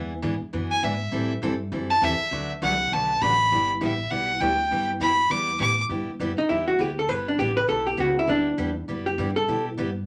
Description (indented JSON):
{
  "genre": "country, western swing",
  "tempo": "201 BPM",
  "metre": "4/4",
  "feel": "swing 61% on 8ths",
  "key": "G major",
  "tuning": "A4 = 439 Hz",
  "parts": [
    { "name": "picked steel-string acoustic guitar", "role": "accompaniment", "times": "0.0-9.9 s", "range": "D3 to B4", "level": "-32 LUFS", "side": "equal", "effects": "none" },
    { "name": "upright bass", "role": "bass", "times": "0.0-10.1 s", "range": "G1 to B2", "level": "-34 LUFS", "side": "equal", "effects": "none" },
    { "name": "clear fiddle", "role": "melody", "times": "0.7-5.8 s", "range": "E5 to D6", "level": "-25 LUFS", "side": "equal", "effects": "none" },
    { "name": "archtop guitar, miked and amplified", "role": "second line", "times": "6.4-9.6 s", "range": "D4 to B4", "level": "-25 LUFS", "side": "equal", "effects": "none" }
  ],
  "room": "wet studio ambience, RT60 0.5 s",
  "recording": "vinyl crackle",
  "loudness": "-24 LUFS",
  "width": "mono",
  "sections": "0.0-5.9 A section; 5.9-10.1 A section",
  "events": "fiddle solo 0.0-5.9; hollow-body jazz guitar solo 5.9-10.1",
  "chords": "0.0 E7; 1.1 Am7; 2.3 D6; 3.5 G6",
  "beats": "0.23 0.53 0.82 | 1.12 1.42 1.72 2.02 | 2.32 2.62 2.92 3.21 | 3.51 3.81 4.11 4.41 | 4.71 5.00 5.30 5.60 | 5.90 6.20 6.49 6.79 | 7.09 7.39 7.69 7.99 | 8.28 8.58 8.88 9.18 | 9.48 9.78"
}